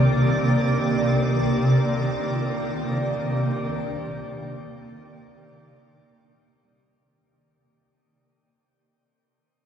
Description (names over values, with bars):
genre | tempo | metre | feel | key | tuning
ambient | free time | none | none | unclear | A4 = 439 Hz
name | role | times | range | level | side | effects
granular cloud pad | sustained chords | 0.0-7.1 s | C3 to G5 | -21 LUFS | equal | built-in reverb
handpan | arpeggios | 0.0-7.6 s | G3 to F5 | -39 LUFS | equal | none
room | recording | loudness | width
wet shimmer reverb, RT60 8.8 s | none | -21 LUFS | side -8 dB against mid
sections
0.0-7.1 A section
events
fade-out 0.0-7.1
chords
0.0 Ebmaj7/C